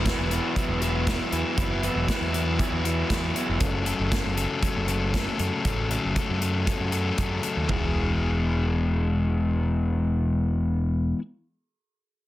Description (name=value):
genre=indie rock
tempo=118 BPM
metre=4/4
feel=straight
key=E major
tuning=A4 = 440 Hz
part: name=crunchy overdriven guitar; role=riff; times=0.0-11.2 s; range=F#2 to B4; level=-26 LUFS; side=left 3 dB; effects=none
part: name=raw garage guitar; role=riff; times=0.0-3.6 s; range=E3 to E4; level=-32 LUFS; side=right 10 dB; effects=overdrive, lush chorus, analog delay
part: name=growling picked electric bass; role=bass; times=0.0-11.1 s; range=E1 to F#2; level=-27 LUFS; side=right 1 dB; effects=overdrive
part: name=big rock drum kit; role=drums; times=0.1-7.8 s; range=hi-hat, kick drum, snare drum, toms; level=-28 LUFS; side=equal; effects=soft clipping on snare
room=light reverb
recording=dense, heavily limited modern master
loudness=-23 LUFS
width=side -15 dB against mid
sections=0.0-7.7 A section; 7.7-11.8 B section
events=none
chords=0.0 Esus2; 3.6 F#m; 7.7 E